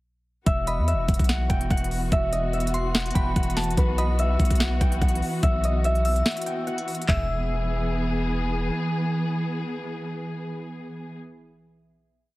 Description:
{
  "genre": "hip hop, trap",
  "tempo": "145 BPM",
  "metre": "4/4",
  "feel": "half-time",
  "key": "unclear",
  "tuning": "A4 = 440 Hz",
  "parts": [
    { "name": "concert harp", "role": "melody", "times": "0.5-8.8 s", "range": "B4 to G5", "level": "-29 LUFS", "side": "equal", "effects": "none" },
    { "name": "muted studio string section", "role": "sustained chords", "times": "0.5-11.2 s", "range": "E3 to G#4", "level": "-29 LUFS", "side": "equal", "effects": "none" },
    { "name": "long sustained 808-style bass", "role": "bass", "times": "0.5-8.7 s", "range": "E1 to E2", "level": "-25 LUFS", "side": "equal", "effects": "none" },
    { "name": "trap drum kit", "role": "drums", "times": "0.5-7.2 s", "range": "handclaps, hi-hat, kick drum, snare drum, toms", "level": "-24 LUFS", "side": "equal", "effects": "overdrive" },
    { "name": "glassy synth bell", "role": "second line", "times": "0.7-8.3 s", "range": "A5 to E6", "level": "-35 LUFS", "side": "equal", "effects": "chorus, digital delay" }
  ],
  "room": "light reverb",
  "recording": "heavily compressed radio sound, multiband compression",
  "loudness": "-22 LUFS",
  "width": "side -18 dB against mid",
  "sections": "0.5-7.1 hook; 7.1-10.4 final chord",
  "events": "break 6.3-7.1",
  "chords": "0.5 Esus2; 3.8 Bsus4; 7.1 E"
}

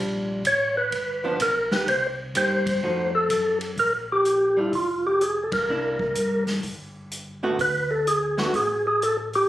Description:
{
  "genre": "soul jazz organ trio",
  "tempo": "126 BPM",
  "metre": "4/4",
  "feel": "swing 66% on 8ths",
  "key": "Bb major",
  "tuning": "A4 = 440 Hz",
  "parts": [
    { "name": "archtop guitar, miked and amplified", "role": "accompaniment", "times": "0.0-8.5 s", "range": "D3 to G4", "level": "-28 LUFS", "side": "right 1 dB", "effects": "none" },
    { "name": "mellow tonewheel organ", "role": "bass", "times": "0.0-9.5 s", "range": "F1 to G2", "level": "-34 LUFS", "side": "equal", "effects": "slow rotary speaker" },
    { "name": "vintage drum kit", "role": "drums", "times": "0.4-9.4 s", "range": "hi-hat, kick drum, ride cymbal, snare drum", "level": "-33 LUFS", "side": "equal", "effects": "none" },
    { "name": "percussive tonewheel organ", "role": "melody", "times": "0.5-9.5 s", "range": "E4 to Db5", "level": "-22 LUFS", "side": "equal", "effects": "fast rotary speaker" }
  ],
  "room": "moderate club reverb, RT60 0.6 s",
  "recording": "recorded on a phone in the room, studio reverb, compression",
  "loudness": "-21 LUFS",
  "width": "side -14 dB against mid",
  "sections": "0.0-3.8 A section; 3.8-9.5 B section",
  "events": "tonewheel organ solo 0.0-3.8; band accent 5.4",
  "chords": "0.0 Bb6; 0.9 G7; 1.9 Cm7; 2.8 F7b9; 3.8 Bb5; 5.7 C9; 7.6 D5"
}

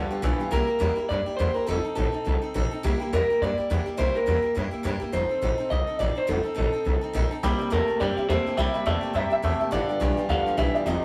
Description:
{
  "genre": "rockabilly",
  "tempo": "209 BPM",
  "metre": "4/4",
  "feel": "swing 58% on 8ths",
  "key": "C mixolydian",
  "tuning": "A4 = 442 Hz",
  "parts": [
    { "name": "electric guitar through a small old amp", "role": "melody", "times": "0.0-11.0 s", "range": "A4 to F5", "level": "-29 LUFS", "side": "equal", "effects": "slapback echo" },
    { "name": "picked steel-string acoustic guitar", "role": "accompaniment", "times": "0.0-11.0 s", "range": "G2 to A4", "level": "-34 LUFS", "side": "equal", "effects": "none" },
    { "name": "twangy electric guitar", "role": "riff", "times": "0.0-0.5, 7.4-11.0 s", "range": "F2 to A3", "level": "-30 LUFS", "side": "equal", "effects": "phaser" },
    { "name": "upright bass", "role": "bass", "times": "0.0-11.0 s", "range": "F1 to G2", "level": "-30 LUFS", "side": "equal", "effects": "none" }
  ],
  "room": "moderate studio reverb, RT60 0.6 s",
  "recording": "rough rehearsal-room recording, tube saturation",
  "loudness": "-25 LUFS",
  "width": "mono",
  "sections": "0.5-11.0 A section",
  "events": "none",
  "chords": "0.0 G7; 0.5 C7; 1.7 F7; 2.8 C7; 5.1 F7; 7.4 C7; 9.7 G7"
}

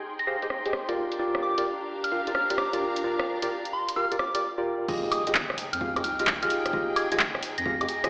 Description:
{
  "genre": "UK garage, two-step garage",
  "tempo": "130 BPM",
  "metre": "4/4",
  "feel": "swing 67% on 16ths",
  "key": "F dorian",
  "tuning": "A4 = 439 Hz",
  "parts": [
    { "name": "rich studio string section", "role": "texture", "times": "0.0-8.1 s", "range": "D4 to C6", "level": "-36 LUFS", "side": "equal", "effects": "sidechain pumping" },
    { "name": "soft synth bell", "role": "melody", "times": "0.2-8.1 s", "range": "C6 to Bb6", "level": "-30 LUFS", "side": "equal", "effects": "chorus, dub echo" },
    { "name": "punchy analog drum machine", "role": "drums", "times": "0.2-8.1 s", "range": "crash cymbal, handclaps, hi-hat, rim click, woodblock", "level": "-28 LUFS", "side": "equal", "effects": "none" },
    { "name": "percussive organ stab", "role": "stabs", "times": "0.3-8.1 s", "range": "F4 to F5", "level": "-29 LUFS", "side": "equal", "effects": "chorus, dub echo" },
    { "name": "soft dub sub bass", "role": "bass", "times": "4.9-8.1 s", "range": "Eb1 to F2", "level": "-39 LUFS", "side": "equal", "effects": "none" },
    { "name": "electronic kick drum", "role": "drums", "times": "4.9-7.8 s", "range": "none", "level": "-39 LUFS", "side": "equal", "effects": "none" },
    { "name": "impact", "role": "sound effects", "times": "4.9-6.7 s", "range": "none", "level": "-45 LUFS", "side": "equal", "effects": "none" }
  ],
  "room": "wet lush hall reverb, RT60 1.8 s",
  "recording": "played on a big sound system in a bare room, large studio reverb, low-pass filter, AM radio sound",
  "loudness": "-24 LUFS",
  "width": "side -27 dB against mid",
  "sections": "0.0-4.9 A section; 4.9-8.1 B section",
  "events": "filter sweep on drum 0.0-4.9; break 4.4-4.9; drop 4.9-8.1; impact 4.9-6.7",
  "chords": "0.0 Abmaj7; 1.0 Gm7; 4.9 Fm9"
}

